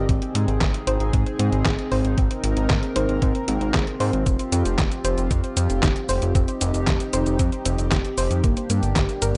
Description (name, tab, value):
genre	synthwave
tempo	115 BPM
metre	4/4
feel	straight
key	unclear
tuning	A4 = 440 Hz
part	chorused pulse-width pad	sustained chords	0.0-9.4 s	Bb3 to Bb4	-30 LUFS	equal	sidechain pumping
part	soft round pluck	arpeggios	0.0-9.4 s	Bb3 to C5	-31 LUFS	equal	chorus, tape echo
part	fat analog bass	bass	0.0-9.3 s	F1 to Ab2	-26 LUFS	equal	sidechain pumping
part	detuned 8-bit digital drum machine	drums	0.1-9.3 s	handclaps, hi-hat, shaker, snare drum	-28 LUFS	equal	none
part	electronic kick drum	drums	0.1-9.1 s	none	-25 LUFS	equal	none
room	digital ambience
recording	nothing above 10.6 kHz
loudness	-22 LUFS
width	mono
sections	0.0-9.4 A section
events	none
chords	0.1 Ab; 4.3 Fsus2; 8.4 Gm